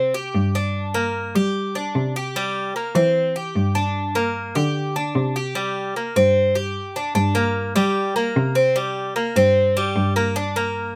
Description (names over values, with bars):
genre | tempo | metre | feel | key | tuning
latin, Cuban son and guajira | 150 BPM | 4/4 | straight | unclear | A4 = 440 Hz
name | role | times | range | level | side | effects
Cuban tres | arpeggios | 0.0-11.0 s | G3 to G4 | -23 LUFS | equal | none
muted cello | bass | 0.0-10.9 s | G2 to G3 | -25 LUFS | equal | none
room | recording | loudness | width
little or no reverb | close, detailed microphones | -21 LUFS | mono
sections
0.0-7.2 A section; 7.2-11.0 B section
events
break 6.8-7.2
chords
0.0 Gmadd11; 2.4 C7; 4.0 Gmadd11; 8.8 C5; 10.4 Gm